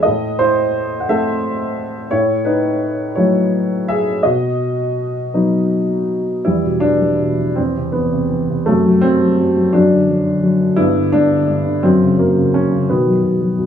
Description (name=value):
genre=classical, lyrical solo piano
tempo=53-59 BPM (dotted quarters)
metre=6/8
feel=rubato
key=E minor from 6.5 s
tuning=A4 = 440 Hz
part: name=dark upright piano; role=solo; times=0.0-13.7 s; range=E2 to F#5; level=-14 LUFS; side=equal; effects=none
room=moderate small room reverb, RT60 0.5 s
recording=studio reverb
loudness=-14 LUFS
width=side -8 dB against mid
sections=0.0-6.5 A section; 6.5-13.7 B section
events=none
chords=0.0 Am; 2.1 F#m7/A; 4.2 B; 6.5 Em; 7.6 Cmaj7/E; 8.7 F#dim; 9.7 D/F#; 10.8 G; 11.8 F#5; 12.9 B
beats=| 0.05 1.08 | 2.12 3.18 | 4.25 5.34 | 6.45 7.57 | 8.67 9.74 | 10.78 11.83 | 12.89